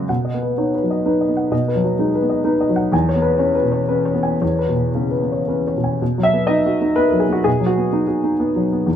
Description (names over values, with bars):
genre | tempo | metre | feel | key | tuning
neoclassical minimalist piano | 111-129 BPM | 3/4 | rubato | B major | A4 = 436 Hz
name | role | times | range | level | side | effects
warm upright piano | solo | 0.0-9.0 s | E2 to G#5 | -16 LUFS | equal | none
room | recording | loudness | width
light reverb | minimal, uncompressed stereo recording | -16 LUFS | side -9 dB against mid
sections
0.1-6.0 A section; 6.0-9.0 B section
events
none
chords
0.1 B; 2.9 E6; 6.0 B